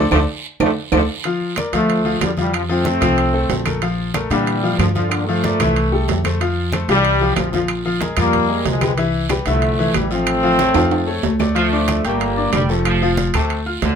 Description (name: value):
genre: latin, salsa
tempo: 186 BPM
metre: 4/4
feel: straight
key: D minor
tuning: A4 = 440 Hz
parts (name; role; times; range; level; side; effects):
- clear trombone section; melody; 0.0-13.1 s; Bb2 to C4; -19 LUFS; equal; none
- bright grand piano; accompaniment; 0.0-13.9 s; D3 to G6; -21 LUFS; left 4 dB; none
- upright bass; bass; 0.0-14.0 s; F1 to Bb2; -21 LUFS; equal; none
- claves; percussion; 0.1-13.5 s; none; -31 LUFS; left 5 dB; none
- congas; percussion; 0.1-14.0 s; none; -27 LUFS; equal; none
- guiro; percussion; 0.1-14.0 s; none; -33 LUFS; right 7 dB; none
- timbales; percussion; 0.1-14.0 s; none; -23 LUFS; right 7 dB; none
- brilliant trombone section; second line; 11.6-14.0 s; C3 to A3; -24 LUFS; right 3 dB; none
room: moderate studio reverb, RT60 0.5 s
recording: minimal, uncompressed stereo recording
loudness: -15 LUFS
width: side -7 dB against mid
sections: 0.0-1.3 A section; 1.3-11.6 B section; 11.6-14.0 C section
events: band accent 0.0-1.3; drum fill 0.4-1.3, 10.8-11.6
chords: 0.0 D7(no3); 1.3 Dm; 2.5 F; 3.8 Bbmaj7; 5.1 Gm9; 5.8 C6; 6.4 Fmaj9; 7.7 Bbsus2; 9.0 Cadd9; 10.3 Aaug; 11.6 Dm; 12.2 Gm; 12.9 F